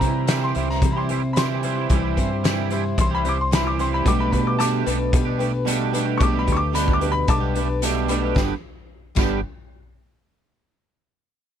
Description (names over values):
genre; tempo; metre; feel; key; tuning
folk rock and heartland rock; 111 BPM; 4/4; straight; G major; A4 = 443 Hz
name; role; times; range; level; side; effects
bright baby grand piano; melody; 0.0-8.3 s; A5 to D6; -26 LUFS; left 2 dB; none
picked twelve-string acoustic guitar; accompaniment; 0.0-9.4 s; B2 to C5; -27 LUFS; left 6 dB; none
twangy electric guitar; riff; 0.0-9.4 s; G2 to G4; -26 LUFS; right 19 dB; analog chorus
fingered electric bass; bass; 0.0-9.4 s; G1 to C3; -25 LUFS; equal; none
loose indie drum kit; drums; 0.0-9.3 s; crash cymbal, hi-hat, kick drum, snare drum; -23 LUFS; equal; none
tambourine; percussion; 0.3-9.4 s; none; -38 LUFS; left 26 dB; none
room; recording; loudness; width
little or no reverb; none; -19 LUFS; side -9 dB against mid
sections
0.0-8.4 A section; 8.4-10.5 B section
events
grand piano solo 0.0-8.4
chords
0.0 C; 4.1 Gadd9/B; 8.4 G